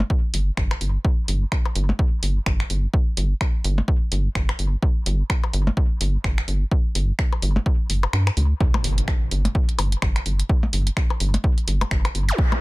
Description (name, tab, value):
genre	minimal techno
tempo	127 BPM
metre	4/4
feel	swing 58% on 16ths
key	unclear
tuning	A4 = 441 Hz
part	rubbery square bass	bass	0.0-12.3 s	G1 to G2	-21 LUFS	equal	sidechain pumping
part	percussion blips	percussion	0.0-12.6 s	none	-28 LUFS	left 3 dB	overdrive, dub echo
part	electronic kick drum	drums	0.1-12.5 s	none	-21 LUFS	equal	none
part	garage drum kit	drums	0.3-12.4 s	finger snaps, hi-hat	-28 LUFS	equal	soft clipping on snare
part	impact and zap	sound effects	8.6-12.4 s	none	-28 LUFS	equal	none
room	little or no reverb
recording	dense, heavily limited modern master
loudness	-19 LUFS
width	side -22 dB against mid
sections	0.0-8.6 A section; 8.6-12.6 B section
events	kick drops out 8.1-8.6; drop 8.6-12.6; impact 8.6-10.5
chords	none